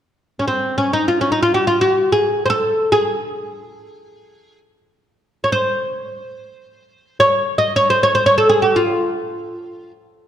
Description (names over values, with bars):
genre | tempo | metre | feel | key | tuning
arabic | free time | none | none | F maqam saba | A4 = 440 Hz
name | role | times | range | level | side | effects
oud | melody | 0.4-9.9 s | C4 to Eb5 | -15 LUFS | equal | none
room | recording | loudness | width
moderate concert hall reverb, RT60 1.8 s | dark, warm production | -14 LUFS | side -10 dB against mid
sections
0.1-10.3 A section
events
none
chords
none